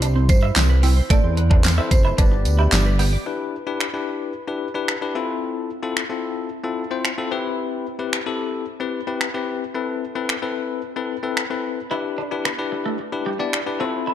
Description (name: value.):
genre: dance-pop.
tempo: 111 BPM.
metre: 4/4.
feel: straight.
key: unclear.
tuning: A4 = 439 Hz.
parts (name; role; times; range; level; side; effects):
marimba with medium hard mallets; melody; 0.0-2.7 s; B4 to D5; -29 LUFS; right 3 dB; tape echo.
bell-like tine electric piano; accompaniment; 0.0-14.1 s; B3 to D5; -25 LUFS; left 5 dB; fast stereo tremolo, sidechain pumping.
twelve-string electric guitar; riff; 0.0-3.1, 11.9-14.1 s; G3 to E4; -29 LUFS; right 4 dB; lush chorus.
chorused synth bass; bass; 0.0-3.2 s; F#1 to G2; -18 LUFS; equal; sidechain pumping.
pop drum kit; drums; 0.0-13.7 s; finger snaps, handclaps, hi-hat, kick drum, snare drum; -21 LUFS; equal; overdrive.
tambourine; percussion; 0.0-3.1 s; none; -37 LUFS; right 8 dB; none.
glassy wavetable pluck; arpeggios; 0.2-3.2 s; A3 to D5; -30 LUFS; right 3 dB; chorus, sidechain pumping, tape echo.
room: light reverb, digital ambience.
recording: dark, warm production.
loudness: -19 LUFS.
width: side -11 dB against mid.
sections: 0.0-3.3 A section; 3.3-14.1 B section.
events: none.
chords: 0.0 C; 1.1 Amadd9; 2.2 G; 3.3 Em7; 5.2 Fmaj7; 7.3 Cmaj7; 9.8 Amadd9; 11.9 Em7.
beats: 0.02 0.56 | 1.10 1.64 2.18 2.72 | 3.26 3.80 4.34 4.88 | 5.42 5.97 6.51 7.05 | 7.59 8.13 8.67 9.21 | 9.75 10.29 10.83 11.37 | 11.91 12.45 12.99 13.53 | 14.07.